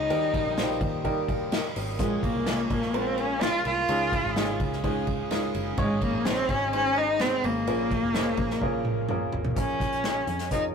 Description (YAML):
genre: piano-driven pop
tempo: 127 BPM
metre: 4/4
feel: straight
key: Bb minor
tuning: A4 = 438 Hz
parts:
  - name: rich cello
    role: melody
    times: 0.0-10.6 s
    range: Ab3 to F4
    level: -26 LUFS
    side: left 1 dB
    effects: none
  - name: warm upright piano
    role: accompaniment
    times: 0.0-10.7 s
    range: Ab2 to F5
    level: -30 LUFS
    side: right 1 dB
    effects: none
  - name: airy breathy pad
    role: sustained chords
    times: 0.0-9.5 s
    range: Db4 to Eb6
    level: -39 LUFS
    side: equal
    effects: none
  - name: fingered electric bass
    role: bass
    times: 0.0-10.7 s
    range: F1 to F2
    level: -35 LUFS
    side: equal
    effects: none
  - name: unplugged drum kit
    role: drums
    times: 0.1-10.6 s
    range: hi-hat, kick drum, ride cymbal, snare drum, toms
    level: -30 LUFS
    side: equal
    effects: none
room: moderate small room reverb, RT60 0.5 s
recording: rough rehearsal-room recording, warm saturation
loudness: -24 LUFS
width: side -6 dB against mid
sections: 0.0-9.6 A section; 9.6-10.7 B section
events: drum fill 8.6-9.6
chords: 0.1 Eb; 2.0 Bbm7; 3.9 Dbadd9; 5.8 Absus4; 7.7 Bbm7